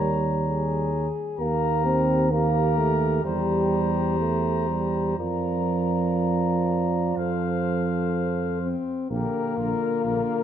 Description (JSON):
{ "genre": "classical, brass quintet", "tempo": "60-67 BPM", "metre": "4/4", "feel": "rubato", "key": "Bb major", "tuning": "A4 = 440 Hz", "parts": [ { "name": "mellow trumpet", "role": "melody", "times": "0.0-10.4 s", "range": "Bb4 to Bb5", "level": "-31 LUFS", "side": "left 8 dB", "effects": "none" }, { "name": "warm flugelhorn", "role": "second line", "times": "0.0-10.4 s", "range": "F4 to D5", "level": "-33 LUFS", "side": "right 6 dB", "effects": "none" }, { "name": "warm French horn", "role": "accompaniment", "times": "0.0-10.4 s", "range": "Bb3 to Bb4", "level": "-30 LUFS", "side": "left 4 dB", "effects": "none" }, { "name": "warm euphonium", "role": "accompaniment", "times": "0.0-10.4 s", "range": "D3 to C4", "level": "-27 LUFS", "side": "right 2 dB", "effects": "none" }, { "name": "mellow tuba", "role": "bass", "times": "0.0-10.2 s", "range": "Bb1 to F2", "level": "-26 LUFS", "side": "right 2 dB", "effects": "none" } ], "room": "moderate scoring stage reverb, RT60 1.7 s", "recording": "none", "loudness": "-22 LUFS", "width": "side -9 dB against mid", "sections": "0.0-9.1 A section; 9.1-10.4 B section", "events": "none", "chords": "0.0 Eb7; 1.4 Eb; 3.2 C7/E; 5.2 Bb/F; 7.2 F; 9.1 Bb", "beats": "0.49 | 1.40 2.32 3.25 4.19 | 5.19 6.19 7.17 8.13 | 9.10 10.04" }